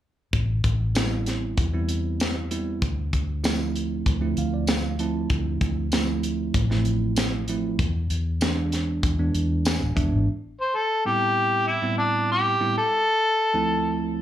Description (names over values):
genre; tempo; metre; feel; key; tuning
straight-eighth soul blues; 97 BPM; 4/4; straight; A minor; A4 = 440 Hz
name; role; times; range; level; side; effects
vintage muted fingered electric bass; bass; 0.3-10.3 s; D1 to E2; -26 LUFS; left 1 dB; none
tight funk drum kit; drums; 0.3-10.1 s; hi-hat, kick drum, snare drum, tambourine; -26 LUFS; left 1 dB; none
bell-like tine electric piano; accompaniment; 0.9-14.2 s; D2 to A5; -27 LUFS; right 4 dB; slapback echo
mellow harmonica; melody; 10.6-14.0 s; D4 to C5; -21 LUFS; left 1 dB; overdrive, slapback echo, tape echo
room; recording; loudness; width
light reverb; live gig heard through the venue's PA, club reverb; -22 LUFS; side -11 dB against mid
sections
0.3-10.3 A section; 10.3-14.2 B section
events
tine electric piano fill 4.1-5.3, 9.3-10.3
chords
0.3 Am7; 2.8 Dm7; 7.8 E7; 10.3 Am7; 12.8 Dm7